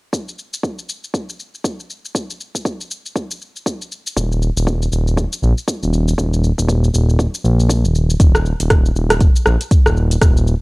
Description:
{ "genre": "afro house", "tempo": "119 BPM", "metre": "4/4", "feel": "swing 59% on 16ths", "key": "unclear", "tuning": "A4 = 440 Hz", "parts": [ { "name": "afro-pop drum kit", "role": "drums", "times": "0.1-10.6 s", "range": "hi-hat, rim click, shaker", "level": "-21 LUFS", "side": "equal", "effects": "cassette tape" }, { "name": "electronic kick drum", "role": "drums", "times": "0.1-10.3 s", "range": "none", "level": "-15 LUFS", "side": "equal", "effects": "high-pass filter on kick, cassette tape" }, { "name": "smooth synth bass", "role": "bass", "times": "4.2-10.5 s", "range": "Eb1 to Bb1", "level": "-15 LUFS", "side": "equal", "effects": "sidechain pumping" } ], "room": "little or no reverb", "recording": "home recording on cassette", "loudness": "-15 LUFS", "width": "side -27 dB against mid", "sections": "0.1-8.2 A section; 8.2-10.6 B section", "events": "none", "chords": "none" }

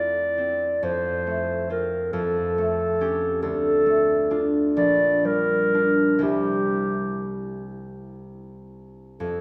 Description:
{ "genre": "classical, romantic duo for clarinet and harp", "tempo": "40-47 BPM (dotted quarters)", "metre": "6/8", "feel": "rubato", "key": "unclear", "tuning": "A4 = 439 Hz", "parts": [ { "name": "dark clarinet", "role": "melody", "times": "0.0-9.4 s", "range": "G4 to D5", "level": "-25 LUFS", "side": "equal", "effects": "none" }, { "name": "concert harp", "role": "accompaniment", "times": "0.0-9.4 s", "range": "Bb1 to G4", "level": "-29 LUFS", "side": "equal", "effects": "none" } ], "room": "wet concert hall reverb, RT60 2.3 s", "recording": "recorded in a church or concert hall", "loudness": "-23 LUFS", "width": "mono", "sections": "0.0-9.4 A section", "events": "none", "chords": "0.0 F; 2.1 A7/F; 3.4 Dm; 4.8 Gm7/Bb; 6.2 C" }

